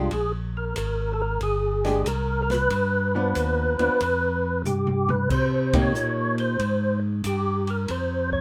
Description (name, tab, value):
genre	soul jazz organ trio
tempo	93 BPM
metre	4/4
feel	swing 67% on 8ths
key	Bb mixolydian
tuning	A4 = 440 Hz
part	percussive tonewheel organ	melody	0.0-8.4 s	F4 to Db5	-27 LUFS	equal	chorus vibrato, slow rotary speaker
part	archtop guitar, miked and amplified	accompaniment	0.0-6.6 s	F3 to G4	-30 LUFS	equal	none
part	tonewheel organ	bass	0.0-8.4 s	G1 to C3	-28 LUFS	equal	overdrive, chorus vibrato, slow rotary speaker
part	open jazz drum kit	drums	0.1-8.4 s	crash cymbal, hi-hat, kick drum, ride cymbal, snare drum, toms	-34 LUFS	equal	none
room	moderate club reverb, RT60 0.5 s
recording	none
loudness	-24 LUFS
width	mono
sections	0.0-8.4 A section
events	drum fill 4.7-5.3; band accent 5.6-5.9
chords	0.1 Bb7sus2; 2.7 G7; 5.3 Cm7; 7.9 F5